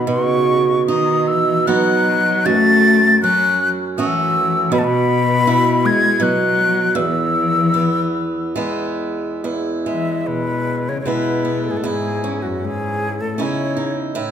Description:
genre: celtic folk, Celtic slow air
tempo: 68-84 BPM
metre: 3/4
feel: rubato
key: E major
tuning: A4 = 440 Hz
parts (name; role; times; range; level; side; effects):
- breathy silver concert flute; melody; 0.0-14.0 s; F#4 to A6; -18 LUFS; left 2 dB; none
- rich cello; second line; 0.0-14.0 s; F#2 to A3; -21 LUFS; left 5 dB; none
- picked swing-style acoustic guitar; accompaniment; 0.0-14.3 s; E2 to F#4; -19 LUFS; right 4 dB; none
room: moderate recital hall reverb, RT60 1.4 s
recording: minimal, uncompressed stereo recording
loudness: -15 LUFS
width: side -8 dB against mid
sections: 0.0-9.4 A section; 9.4-14.3 B section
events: none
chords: 0.0 B; 2.5 F#m; 4.7 Bsus4; 6.2 N.C.; 7.0 E; 11.9 C#madd9/E

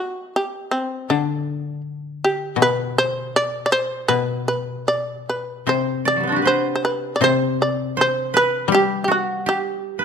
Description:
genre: japanese traditional, Japanese chamber music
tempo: 74-83 BPM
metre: 2/4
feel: rubato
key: G ryukyu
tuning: A4 = 440 Hz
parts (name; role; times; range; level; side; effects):
- shamisen; melody; 0.0-10.0 s; C4 to D5; -21 LUFS; equal; none
- koto; second line; 0.0, 5.7-10.0 s; F#3 to D5; -22 LUFS; right 3 dB; none
- koto; accompaniment; 0.0-10.0 s; B2 to G3; -25 LUFS; left 7 dB; none
room: light reverb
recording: close, detailed microphones, lossy compression artefacts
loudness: -18 LUFS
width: side -7 dB against mid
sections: 0.0-10.0 A section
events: none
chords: none

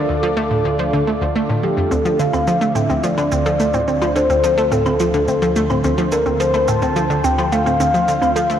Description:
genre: ambient, sequencer-driven space music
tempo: 107 BPM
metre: 4/4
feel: straight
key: D minor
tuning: A4 = 440 Hz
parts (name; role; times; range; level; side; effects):
- soft octave-layered synth lead; melody; 0.0-8.6 s; G4 to A5; -19 LUFS; left 1 dB; chorus, ping-pong delay
- lush unison pad; sustained chords; 0.0-8.6 s; D3 to D5; -23 LUFS; equal; chorus, phaser
- analog pluck; riff; 0.0-8.6 s; D2 to A3; -20 LUFS; equal; chorus, ping-pong delay
- analog drone; bass; 0.0-8.6 s; D2; -28 LUFS; equal; chorus
- wide unison pluck; arpeggios; 1.9-8.5 s; C4 to A4; -24 LUFS; right 1 dB; auto-pan, ping-pong delay
- cabasa and woodblock; percussion; 1.9-8.6 s; none; -32 LUFS; right 1 dB; ping-pong delay
room: wet lush hall reverb, RT60 3.1 s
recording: worn, warbling old tape, cassette tape, warbly pitch drift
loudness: -15 LUFS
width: side -9 dB against mid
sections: 0.0-8.6 A section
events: none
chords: 0.0 Dm7

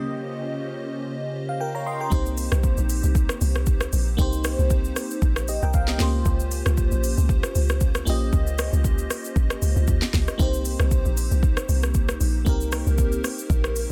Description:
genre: amapiano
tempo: 116 BPM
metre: 4/4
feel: swing 55% on 16ths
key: unclear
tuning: A4 = 440 Hz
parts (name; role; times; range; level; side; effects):
- FM electric piano with soft pad layer; accompaniment; 0.0-13.9 s; Db3 to C6; -31 LUFS; equal; chorus, phaser
- ensemble organ-string; sustained chords; 0.0-2.1 s; Db3 to G4; -36 LUFS; equal; ensemble chorus, sidechain pumping
- deep log drum bass; bass; 2.1-13.9 s; Bb1 to Eb2; -25 LUFS; equal; none
- afro-pop drum kit; drums; 2.1-13.9 s; hi-hat, kick drum, rim click, shaker, snare drum; -27 LUFS; equal; none
room: little or no reverb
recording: dense, heavily limited modern master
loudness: -23 LUFS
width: mono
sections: 0.0-2.1 A section; 2.1-13.9 B section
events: break 0.1-2.1; drop 2.1-13.9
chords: 0.0 Bbm69/Db; 2.1 Cm7; 6.0 Bbm69; 10.4 Cm7

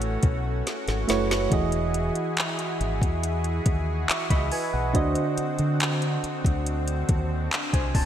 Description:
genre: contemporary R&B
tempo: 70 BPM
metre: 4/4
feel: straight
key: unclear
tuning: A4 = 440 Hz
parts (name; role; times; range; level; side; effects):
- soft electric-piano-like synth keys; accompaniment; 0.0-8.1 s; D3 to C#6; -28 LUFS; right 3 dB; chorus
- lush unison pad; sustained chords; 0.0-8.1 s; D3 to G#4; -32 LUFS; left 1 dB; chorus
- deep dub fingered electric bass; bass; 0.0-8.1 s; E1 to D3; -27 LUFS; equal; none
- smooth R&B drum kit; drums; 0.0-8.1 s; handclaps, hi-hat, kick drum, snare drum; -26 LUFS; equal; gated reverb
room: moderate lush hall reverb, RT60 2.9 s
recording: bright 1980s-style digital production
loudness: -23 LUFS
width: side -10 dB against mid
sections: 0.0-8.1 A section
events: drum fill 0.7-1.5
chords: 0.0 A69; 1.5 Emaj9; 4.9 D7b9

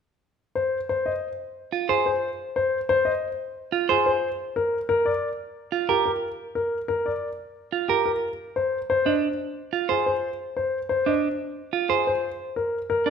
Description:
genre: classical, minimalist pattern music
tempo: 180 BPM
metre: 6/4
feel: straight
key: unclear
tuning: A4 = 440 Hz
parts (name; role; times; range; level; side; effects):
- warm concert grand piano; melody; 0.6-13.1 s; G4 to Eb5; -24 LUFS; left 3 dB; none
- semi-hollow electric guitar; arpeggios; 1.7-13.1 s; D4 to C5; -24 LUFS; right 9 dB; none
room: wet recital hall reverb, RT60 1.4 s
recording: none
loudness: -23 LUFS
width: side -6 dB against mid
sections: 0.4-13.1 A section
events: none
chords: 0.4 F5; 4.4 Fsus4; 8.4 F5; 12.4 N.C.

